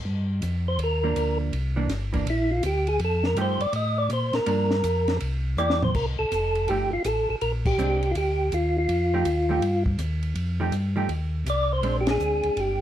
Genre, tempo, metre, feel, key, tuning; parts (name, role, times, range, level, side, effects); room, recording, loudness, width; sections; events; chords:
soul jazz organ trio; 163 BPM; 4/4; swing 65% on 8ths; F mixolydian; A4 = 439 Hz
mellow tonewheel organ; bass; 0.1-12.8 s; F1 to Bb2; -26 LUFS; equal; slow rotary speaker
compact cocktail drum kit; drums; 0.4-12.7 s; crash cymbal, hi-hat, kick drum, ride cymbal, snare drum, toms; -33 LUFS; equal
percussive tonewheel organ; melody; 0.7-12.8 s; E4 to Eb5; -24 LUFS; equal; slow rotary speaker
vintage hollow-body jazz guitar; accompaniment; 1.0-12.8 s; E3 to G4; -30 LUFS; right 5 dB
light reverb; dark, warm production; -22 LUFS; side -11 dB against mid
0.0-5.9 A section; 5.9-12.8 B section
tonewheel organ solo 0.0-5.9; drum fill 5.6-5.9; band accent 7.6, 12.0
0.1 Gm7; 1.5 C9; 3.0 F9; 4.5 Gm7; 5.2 C7; 5.9 F9; 7.4 Bb9; 8.9 F9; 11.8 Bb9